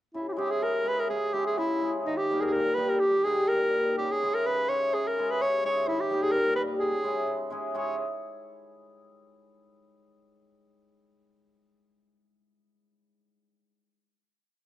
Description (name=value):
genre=balkan folk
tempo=126 BPM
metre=2/4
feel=swing 54% on 16ths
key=C# dorian sharp4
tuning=A4 = 440 Hz
part: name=clear alto saxophone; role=melody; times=0.1-8.0 s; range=D#4 to C#5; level=-27 LUFS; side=equal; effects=slapback echo
part: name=cimbalom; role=accompaniment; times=0.1-8.0 s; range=A#2 to G#4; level=-30 LUFS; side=left 1 dB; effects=none
room=light reverb, small room ambience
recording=dry, close 1970s-style studio recording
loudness=-25 LUFS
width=side -14 dB against mid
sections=0.1-7.7 A section; 7.7-8.7 final chord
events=none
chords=0.1 C#m; 2.1 D#; 4.0 C#m; 5.9 D#; 6.8 C#m